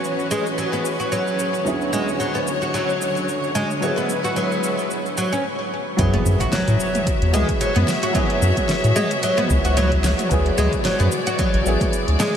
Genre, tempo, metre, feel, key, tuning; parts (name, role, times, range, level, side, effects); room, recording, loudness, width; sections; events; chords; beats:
organic downtempo; 111 BPM; 4/4; swing 56% on 16ths; A4 = 440 Hz
felt-muted upright piano; accompaniment; 0.0-12.4 s; D2 to G#4; -27 LUFS; right 1 dB; analog chorus, sidechain pumping, ping-pong delay
warm studio string section; sustained chords; 0.0-12.4 s; D3 to E5; -25 LUFS; left 1 dB; sidechain pumping
oud; arpeggios; 0.0-12.3 s; F#3 to F#4; -23 LUFS; equal; ping-pong delay
deep house drum kit; drums; 0.0-12.3 s; hi-hat, shaker, snare drum, toms; -27 LUFS; right 1 dB; overdrive
twinkling granular texture; texture; 0.0-5.4 s; C#5; -36 LUFS; right 2 dB
round analog bass; bass; 6.0-12.2 s; A1 to A2; -18 LUFS; equal
electronic kick drum; drums; 6.0-11.9 s; -24 LUFS; equal; overdrive
impact; sound effects; 6.0-8.1 s; -31 LUFS; equal
wet huge ambient reverb, RT60 7.8 s; dreamy mix soaked in reverb; -18 LUFS; side -8 dB against mid
0.0-6.0 A section; 6.0-12.4 B section
stop 5.4-6.0; impact 6.0-8.1
0.0 F#5; 1.7 E7; 6.0 F#7(no3); 10.3 Dmaj7
0.04 0.58 1.12 | 1.66 2.20 2.74 3.28 | 3.82 4.36 4.91 5.45 | 5.99 6.53 7.07 7.61 | 8.15 8.69 9.23 9.77 | 10.31 10.85 11.39 11.93